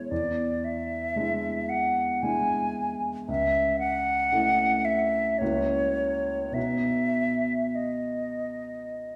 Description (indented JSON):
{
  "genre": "classical, romantic duo for flute and grand piano",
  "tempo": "50-58 BPM",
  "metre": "3/4",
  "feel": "rubato",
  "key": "E major",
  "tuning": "A4 = 440 Hz",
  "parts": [
    { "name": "mellow silver concert flute", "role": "melody", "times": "0.0-9.2 s", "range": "C#5 to G#5", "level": "-28 LUFS", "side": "equal", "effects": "none" },
    { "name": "warm baby grand piano", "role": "accompaniment", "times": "0.0-9.2 s", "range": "C#2 to F#4", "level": "-32 LUFS", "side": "equal", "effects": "none" }
  ],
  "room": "wet recital hall reverb, RT60 1.4 s",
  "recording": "recorded in a church or concert hall",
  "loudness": "-27 LUFS",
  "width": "mono",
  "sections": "0.0-9.2 A section",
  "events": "none",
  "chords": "0.1 E7; 3.3 A/C#; 5.4 F#7/C#; 6.6 B",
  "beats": "| 0.11 1.17 2.23 | 3.29 4.33 5.41 | 6.56 7.75 8.96"
}